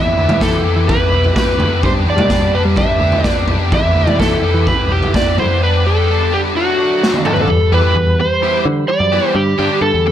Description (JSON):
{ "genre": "psychedelic rock", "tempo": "127 BPM", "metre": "4/4", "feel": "straight", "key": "E minor", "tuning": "A4 = 440 Hz", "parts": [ { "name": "overdriven slide guitar", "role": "melody", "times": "0.0-10.1 s", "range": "F#4 to E5", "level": "-16 LUFS", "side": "equal", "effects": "analog delay" }, { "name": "cranked stack guitar", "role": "riff", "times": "0.0-10.1 s", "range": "D3 to G4", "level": "-19 LUFS", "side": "left 1 dB", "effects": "overdrive, flanger" }, { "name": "picked electric bass", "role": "bass", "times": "0.0-10.1 s", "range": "B1 to G3", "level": "-19 LUFS", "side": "equal", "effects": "none" }, { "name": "raw garage drum kit", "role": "drums", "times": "0.3-7.5 s", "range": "kick drum, snare drum, toms", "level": "-15 LUFS", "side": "equal", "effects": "none" }, { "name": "percussive tonewheel organ", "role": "sustained chords", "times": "7.5-10.1 s", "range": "D3 to B5", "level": "-23 LUFS", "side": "right 4 dB", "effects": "fast rotary speaker" } ], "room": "light reverb", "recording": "none", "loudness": "-12 LUFS", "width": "side -10 dB against mid", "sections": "0.0-7.5 A section; 7.5-10.1 B section", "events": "drum fill 7.0-7.5", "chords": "0.0 Em; 5.6 G; 6.5 D; 7.5 Em; 9.4 G", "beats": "0.41 0.88 1.35 | 1.83 2.30 2.77 3.24 | 3.72 4.19 4.66 5.13 | 5.60 6.07 6.54 7.01 | 7.48 7.95 8.42 8.89 | 9.36 9.83" }